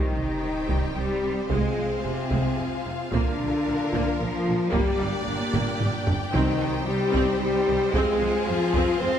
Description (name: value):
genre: cinematic, epic orchestral film score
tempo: 112 BPM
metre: 3/4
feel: straight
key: C minor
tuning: A4 = 440 Hz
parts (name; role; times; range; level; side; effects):
- warm symphonic violin section; melody; 0.0-9.2 s; F5 to G5; -39 LUFS; left 4 dB; none
- warm symphonic violin section; second line; 0.0-9.2 s; Bb4 to D5; -35 LUFS; left 2 dB; none
- rich symphonic viola section; accompaniment; 0.0-9.1 s; C3 to C4; -32 LUFS; right 3 dB; none
- clear studio string section; sustained chords; 0.0-9.2 s; Bb3 to G5; -33 LUFS; equal; none
- mellow French horn section; sustained chords; 0.0-9.2 s; Bb3 to C5; -27 LUFS; left 3 dB; none
- rich symphonic cello section; bass; 0.0-9.2 s; Bb2 to C4; -30 LUFS; right 1 dB; none
- sub drop; sound effects; 0.1-1.5 s; none; -36 LUFS; equal; none
- clear symphonic double bass section; bass; 0.2-9.1 s; F1 to F2; -31 LUFS; right 3 dB; none
- taiko ensemble; drums; 0.7-9.2 s; none; -29 LUFS; equal; none
- timpani; percussion; 6.3-7.1 s; C3; -31 LUFS; right 2 dB; none
room: moderate scoring stage reverb, RT60 1.6 s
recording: none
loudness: -22 LUFS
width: side -9 dB against mid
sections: 0.0-9.2 A section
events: impact 0.0-1.5; drum fill 5.5-6.3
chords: 0.0 Cm; 1.5 Fm; 3.1 Bb; 4.7 Gm; 6.3 Cm; 7.9 Fm